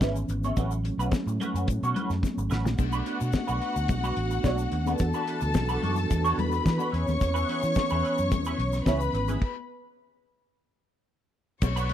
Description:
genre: disco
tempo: 108 BPM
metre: 4/4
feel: straight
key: unclear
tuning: A4 = 439 Hz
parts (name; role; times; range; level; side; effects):
- clean electric guitar; accompaniment; 0.0-11.9 s; G#3 to C#5; -32 LUFS; right 4 dB; wah, ensemble chorus
- mellow tonewheel organ; sustained chords; 0.0-9.4 s; E3 to A4; -33 LUFS; right 3 dB; chorus vibrato, slow rotary speaker
- fingered electric bass; bass; 0.0-11.9 s; G#1 to E3; -28 LUFS; equal; none
- damped 70s drum kit; drums; 0.0-11.9 s; crash cymbal, hi-hat, kick drum, snare drum; -28 LUFS; equal; none
- congas; percussion; 0.0-11.9 s; none; -36 LUFS; left 8 dB; none
- egg shaker; percussion; 0.0-11.9 s; none; -49 LUFS; left 21 dB; none
- warm studio string section; second line; 2.8-11.9 s; F#4 to C#6; -31 LUFS; left 3 dB; slapback echo
room: small room reverb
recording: dry, close 1970s-style studio recording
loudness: -24 LUFS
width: side -10 dB against mid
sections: 0.0-2.8 A section; 2.8-11.6 B section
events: drum fill 2.2-2.8; stop 9.4-11.6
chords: 0.0 C#m7; 0.6 A69; 2.8 Bm7; 5.0 E9sus4; 6.9 C#m7; 9.4 N.C.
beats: 0.02 | 0.57 1.12 1.68 2.23 | 2.79 3.34 3.89 4.45 | 5.00 5.55 6.11 6.66 | 7.21 7.76 8.32 8.87 | 9.42 9.97 10.52 11.07 | 11.62

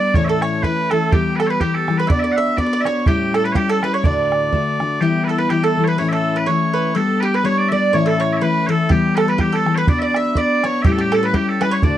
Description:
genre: celtic folk, Celtic polka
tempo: 123 BPM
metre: 2/4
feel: swing 57% on 8ths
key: unclear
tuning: A4 = 439 Hz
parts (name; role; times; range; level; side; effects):
- loud bright bagpipes; melody; 0.0-12.0 s; G4 to F#5; -21 LUFS; equal; none
- mandolin; second line; 0.0-12.0 s; G4 to E5; -22 LUFS; right 6 dB; none
- picked steel-string acoustic guitar; accompaniment; 0.0-12.0 s; D2 to B4; -19 LUFS; left 4 dB; none
- bodhran; percussion; 0.1-4.9, 8.9-11.9 s; none; -18 LUFS; right 2 dB; none
room: little or no reverb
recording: dry, close 1970s-style studio recording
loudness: -15 LUFS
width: side -12 dB against mid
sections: 0.0-5.0 A section; 5.0-12.0 A section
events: none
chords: 0.1 A; 1.1 Em; 2.1 Bm; 3.1 A7; 4.0 D; 5.0 Em; 6.0 A; 7.0 G; 7.9 A; 8.9 Em; 9.9 Bm; 10.8 A7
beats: | 0.14 0.63 | 1.12 1.60 | 2.09 2.58 | 3.06 3.55 | 4.04 4.52 | 5.01 5.50 | 5.98 6.47 | 6.96 7.44 | 7.93 8.41 | 8.90 9.39 | 9.87 10.36 | 10.84 11.33 | 11.81

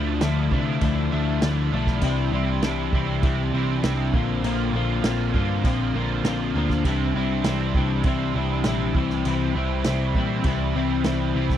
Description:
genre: indie rock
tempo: 100 BPM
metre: 4/4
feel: straight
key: C mixolydian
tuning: A4 = 440 Hz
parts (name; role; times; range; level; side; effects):
- distorted electric guitar; riff; 0.0-11.6 s; Bb2 to F4; -28 LUFS; right 8 dB; distortion, ensemble chorus
- twelve-string electric guitar; riff; 0.0-11.6 s; Bb2 to F4; -25 LUFS; left 6 dB; lush chorus
- hollow-body short-scale picked electric bass; bass; 0.0-11.6 s; Bb1 to C3; -26 LUFS; right 1 dB; none
- vintage drum kit; drums; 0.2-11.6 s; crash cymbal, kick drum, snare drum; -26 LUFS; right 1 dB; none
room: small room ambience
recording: dry, close 1970s-style studio recording, faint mains hum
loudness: -21 LUFS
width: side -10 dB against mid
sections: 0.0-11.6 A section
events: none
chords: 0.0 Dmadd9; 2.0 Cadd9; 4.1 Bbadd9; 6.9 Cadd9; 9.0 C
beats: 0.21 0.82 1.42 | 2.03 2.63 3.24 3.84 | 4.44 5.04 5.65 6.25 | 6.85 7.45 8.05 8.65 | 9.25 9.85 10.45 11.05

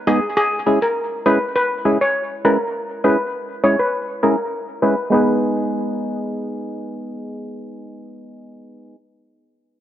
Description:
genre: dancehall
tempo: 101 BPM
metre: 4/4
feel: straight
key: G# minor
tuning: A4 = 438 Hz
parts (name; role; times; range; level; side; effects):
- steel pan; melody; 0.1-6.9 s; G#4 to C#5; -20 LUFS; left 1 dB; low-pass filter, tape echo
- percussive organ stab; accompaniment; 0.1-9.0 s; G#3 to B4; -20 LUFS; equal; chorus, low-pass filter
room: light reverb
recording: dry, gritty hardware recording, transformer saturation, cassette tape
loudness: -17 LUFS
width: side -11 dB against mid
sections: 0.0-5.1 A section; 5.1-7.5 B section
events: filter sweep 0.0-5.1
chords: 0.4 C#m; 5.1 G#m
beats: | 0.37 0.96 1.56 2.15 | 2.75 3.34 3.93 4.53 | 5.12 5.71 6.31 6.90

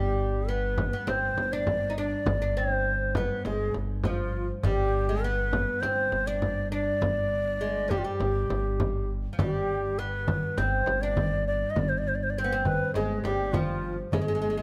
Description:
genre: Arabic maqam ensemble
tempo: 101 BPM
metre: 4/4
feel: straight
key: G maqam hijaz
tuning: A4 = 441 Hz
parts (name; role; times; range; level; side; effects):
- breathy reedy ney; melody; 0.0-14.6 s; F4 to Eb5; -32 LUFS; equal; none
- oud; second line; 0.0-14.6 s; F3 to Eb4; -36 LUFS; equal; none
- upright bass; bass; 0.0-14.6 s; G1; -34 LUFS; equal; none
- warm double bass; drone; 0.0-14.6 s; G2; -39 LUFS; equal; none
- frame drum; percussion; 0.8-14.3 s; none; -35 LUFS; equal; none
- darbuka; percussion; 9.4-14.5 s; none; -36 LUFS; equal; none
room: light reverb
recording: close, detailed microphones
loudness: -28 LUFS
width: mono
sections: 0.0-9.4 A section; 9.4-14.6 A section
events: none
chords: none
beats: 0.48 1.07 1.67 | 2.26 2.86 3.45 4.05 | 4.64 5.23 5.83 6.42 | 7.02 7.61 8.20 8.80 | 9.39 9.98 10.58 11.17 | 11.76 12.36 12.95 13.54 | 14.13

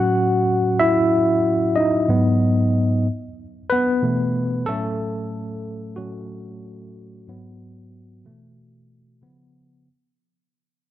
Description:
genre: soul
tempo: 92 BPM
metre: 4/4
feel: straight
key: unclear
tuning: A4 = 442 Hz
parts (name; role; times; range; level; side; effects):
- tine electric piano; solo; 0.0-9.9 s; G#2 to F#5; -19 LUFS; equal; medium stereo tremolo
room: light reverb, digital ambience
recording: none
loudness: -17 LUFS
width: side -13 dB against mid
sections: 0.0-9.9 A section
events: fade-out 0.0-9.9; tine electric piano solo 0.0-9.9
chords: 0.0 A6; 2.1 G#m7; 3.1 B7sus4; 4.7 A6; 7.3 G#m7; 8.2 B7sus4; 9.2 C#7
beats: 0.14 0.79 1.44 | 2.08 2.73 3.38 4.03 | 4.68 5.33 5.98 6.63 | 7.28 7.93 8.57 9.22

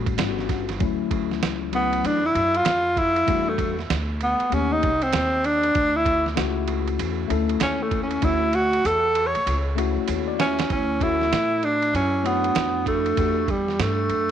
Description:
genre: hip hop, jazz-hop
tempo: 97 BPM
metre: 4/4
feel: swing 64% on 16ths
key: D major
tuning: A4 = 442 Hz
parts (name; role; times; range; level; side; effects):
- mellow tine electric piano; accompaniment; 0.0-13.4 s; F#3 to E5; -28 LUFS; left 15 dB; none
- upright bass; bass; 0.0-14.3 s; G1 to A2; -28 LUFS; equal; none
- lo-fi sampler-style drum kit; drums; 0.1-14.3 s; hi-hat, kick drum, ride cymbal, snare drum; -29 LUFS; right 4 dB; none
- breathy tenor saxophone; melody; 1.8-14.3 s; G3 to C#5; -22 LUFS; equal; none
- vibraphone with hard mallets; second line; 10.4-14.3 s; B3 to A4; -30 LUFS; right 17 dB; none
room: moderate spring reverb, RT60 2.6 s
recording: 1960s-style stereo with parts hard left and right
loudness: -20 LUFS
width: side -9 dB against mid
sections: 0.8-10.7 A section; 10.7-14.3 B section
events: tenor saxophone solo 0.8-10.7; drum fill 8.2-10.7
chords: 0.0 A13; 0.8 Dmaj9; 3.3 Em11; 4.5 Eb7#11; 5.7 Dmaj9; 13.2 Em11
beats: 0.18 | 0.80 1.42 2.04 2.66 | 3.27 3.89 4.51 5.13 | 5.75 6.37 6.99 7.61 | 8.22 8.84 9.46 10.08 | 10.70 11.32 11.94 12.55 | 13.17 13.79

